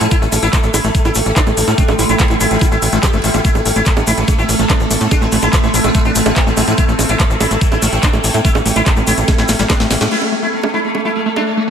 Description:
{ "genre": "psychedelic trance", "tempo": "144 BPM", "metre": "4/4", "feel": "straight", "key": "A minor", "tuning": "A4 = 439 Hz", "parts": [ { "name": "sitar", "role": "melody", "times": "0.0-11.7 s", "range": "E3 to G4", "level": "-20 LUFS", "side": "equal", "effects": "phaser, sidechain pumping, diffuse ambient delay" }, { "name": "evolving wavetable pad", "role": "sustained chords", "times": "0.0-11.7 s", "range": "A3 to A4", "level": "-21 LUFS", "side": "equal", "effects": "phaser, built-in reverb, sidechain pumping" }, { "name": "tight sequencer bass", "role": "bass", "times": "0.0-10.1 s", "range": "G1 to A2", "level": "-17 LUFS", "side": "equal", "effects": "none" }, { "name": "drum and bass drum kit", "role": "drums", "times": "0.0-11.4 s", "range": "bongos, crash cymbal, handclaps, hi-hat, snare drum", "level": "-20 LUFS", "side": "right 2 dB", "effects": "none" }, { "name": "egg shaker", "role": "percussion", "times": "0.0-10.1 s", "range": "none", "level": "-24 LUFS", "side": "left 3 dB", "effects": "none" }, { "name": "airy breathy pad", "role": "texture", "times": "0.0-11.7 s", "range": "A4 to A5", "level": "-24 LUFS", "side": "right 1 dB", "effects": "chorus, sidechain pumping" }, { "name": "overdriven acid bass", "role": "riff", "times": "0.1-11.7 s", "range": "G3 to E4", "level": "-22 LUFS", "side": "moving between left 7 dB and right 6 dB", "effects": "distortion, auto-pan, sidechain pumping, tape echo" }, { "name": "electronic kick drum", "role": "drums", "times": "0.1-9.8 s", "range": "none", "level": "-14 LUFS", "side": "equal", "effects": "none" } ], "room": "moderate lush hall reverb, RT60 2.1 s", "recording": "dreamy mix soaked in reverb", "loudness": "-11 LUFS", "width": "side -8 dB against mid", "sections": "0.0-10.1 A section; 10.1-11.7 B section", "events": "drop 0.0-10.1; drum fill 9.3-10.1; band accent 10.0", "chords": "0.0 A5" }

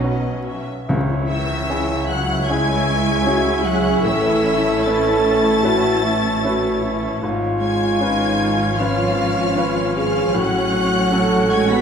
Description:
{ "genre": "cinematic, emotional film score for orchestra", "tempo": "76 BPM", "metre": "4/4", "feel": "rubato", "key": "C# minor", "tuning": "A4 = 440 Hz", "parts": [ { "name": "rich symphonic violin section", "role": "melody", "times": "0.0-11.8 s", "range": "D#5 to B6", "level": "-27 LUFS", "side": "left 3 dB", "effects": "none" }, { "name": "clear baby grand piano", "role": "accompaniment", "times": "0.0-11.8 s", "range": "B1 to B4", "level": "-24 LUFS", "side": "left 1 dB", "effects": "none" }, { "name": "rich symphonic viola section", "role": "accompaniment", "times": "0.0-11.8 s", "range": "F#3 to F#4", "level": "-27 LUFS", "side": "right 1 dB", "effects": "none" }, { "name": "warm French horn section", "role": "sustained chords", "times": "0.0-11.8 s", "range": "C#4 to A4", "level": "-22 LUFS", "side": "equal", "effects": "none" }, { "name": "rich chamber double bass section", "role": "bass", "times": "0.0-11.8 s", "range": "G#1 to C#2", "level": "-27 LUFS", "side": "right 2 dB", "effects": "none" }, { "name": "rich symphonic cello section", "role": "bass", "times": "0.0-11.8 s", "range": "B2 to B3", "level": "-24 LUFS", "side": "right 2 dB", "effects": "none" }, { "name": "clear oboe", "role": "second line", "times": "0.9-11.8 s", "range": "C#5", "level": "-29 LUFS", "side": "right 4 dB", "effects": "none" }, { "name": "silver concert flute", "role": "second line", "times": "0.9-11.8 s", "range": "E5 to F#5", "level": "-28 LUFS", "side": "left 2 dB", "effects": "none" }, { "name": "timpani", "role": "percussion", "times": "0.9-2.1 s", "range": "C#3", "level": "-24 LUFS", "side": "left 1 dB", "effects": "none" }, { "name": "rich symphonic violin section", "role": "second line", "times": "1.3-11.8 s", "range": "E5 to B5", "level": "-26 LUFS", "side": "left 2 dB", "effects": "none" } ], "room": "wet scoring stage reverb, RT60 1.6 s", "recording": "minimal, uncompressed stereo recording, vinyl crackle", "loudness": "-16 LUFS", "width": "side -7 dB against mid", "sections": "0.9-11.8 A section", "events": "none", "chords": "0.0 Badd9; 0.9 C#m; 4.1 Aadd9; 7.2 C#7/G#; 10.3 F#madd9/A" }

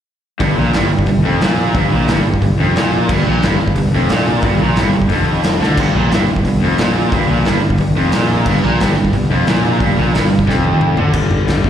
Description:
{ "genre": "punk rock", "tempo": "179 BPM", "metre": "4/4", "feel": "straight", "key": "G minor", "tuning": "A4 = 442 Hz", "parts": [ { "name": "biting overdriven guitar", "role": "riff", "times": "0.4-11.1 s", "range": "F2 to D3", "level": "-19 LUFS", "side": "right 9 dB", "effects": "slapback echo" }, { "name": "raw garage guitar", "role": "riff", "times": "0.4-11.7 s", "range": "F2 to G3", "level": "-19 LUFS", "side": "left 10 dB", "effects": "overdrive, slapback echo" }, { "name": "fuzz picked electric bass", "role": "bass", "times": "0.4-11.7 s", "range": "F1 to D2", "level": "-17 LUFS", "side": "equal", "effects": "overdrive" }, { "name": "raw garage drum kit", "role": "drums", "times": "0.4-11.7 s", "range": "crash cymbal, hi-hat, kick drum, snare drum, splash cymbal, toms", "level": "-17 LUFS", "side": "equal", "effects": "none" } ], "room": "light reverb", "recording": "live gig heard through the venue's PA, recital hall reverb", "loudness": "-12 LUFS", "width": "side -9 dB against mid", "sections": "0.4-11.1 A section", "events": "drum fill 5.6, 10.5-11.1", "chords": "0.4 Gm; 11.1 G5" }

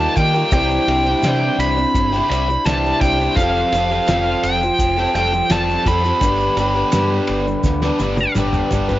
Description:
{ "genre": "folk rock and heartland rock", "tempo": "84 BPM", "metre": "4/4", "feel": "straight", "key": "C major", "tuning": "A4 = 439 Hz", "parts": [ { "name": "biting lead guitar", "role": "melody", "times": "0.0-8.3 s", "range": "F5 to B5", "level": "-19 LUFS", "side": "equal", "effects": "overdrive, cassette tape, analog delay" }, { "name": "picked old ladder-braced acoustic guitar", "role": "accompaniment", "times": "0.0-9.0 s", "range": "C3 to C5", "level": "-24 LUFS", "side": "left 2 dB", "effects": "cassette tape" }, { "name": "overdriven electric guitar", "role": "riff", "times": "0.0-9.0 s", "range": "G2 to A4", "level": "-21 LUFS", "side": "equal", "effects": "cassette tape" }, { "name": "deep dub fingered electric bass", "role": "bass", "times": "0.0-9.0 s", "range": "F1 to Eb3", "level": "-22 LUFS", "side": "equal", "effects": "none" }, { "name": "egg shaker", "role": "percussion", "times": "0.0-9.0 s", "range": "none", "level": "-40 LUFS", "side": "right 7 dB", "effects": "none" }, { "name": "cloth-damped thuddy drum kit", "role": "drums", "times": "0.2-9.0 s", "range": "kick drum, ride cymbal, snare drum, toms", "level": "-24 LUFS", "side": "equal", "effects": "none" }, { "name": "warm upright piano", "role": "accompaniment", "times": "0.5-9.0 s", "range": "G4 to B5", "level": "-35 LUFS", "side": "right 3 dB", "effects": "none" } ], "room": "light reverb", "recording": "home recording on cassette, nothing above 7.7 kHz", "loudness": "-15 LUFS", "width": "side -15 dB against mid", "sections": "0.0-9.0 A section", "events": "drum fill 7.6-9.0; upright piano fill 7.6-9.0", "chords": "0.0 Ebadd9; 0.5 Cadd9; 3.4 Fadd9; 6.2 G" }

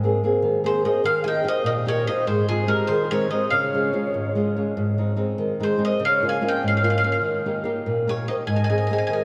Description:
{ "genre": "italian folk, Italian serenade", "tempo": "97 BPM (dotted quarters)", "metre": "6/8", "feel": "straight", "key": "Ab major", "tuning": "A4 = 440 Hz", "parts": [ { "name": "flamenco guitar", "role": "accompaniment", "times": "0.0-9.2 s", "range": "Ab2 to Ab4", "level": "-24 LUFS", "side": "equal", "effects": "none" }, { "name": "bowl-back mandolin", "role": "melody", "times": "0.7-9.2 s", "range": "Ab4 to Ab5", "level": "-28 LUFS", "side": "equal", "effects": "none" }, { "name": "round clay ocarina", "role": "second line", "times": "0.7-9.2 s", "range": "F4 to F5", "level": "-30 LUFS", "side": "equal", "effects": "none" } ], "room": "wet cathedral reverb, RT60 4.6 s", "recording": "recorded in a church or concert hall", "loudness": "-22 LUFS", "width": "mono", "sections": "0.0-9.2 A section", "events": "none", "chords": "0.0 Abadd9; 1.1 Ebadd9; 2.3 Ab; 3.5 Db; 4.8 Ab; 6.0 Db6; 7.2 Eb; 8.5 Ab" }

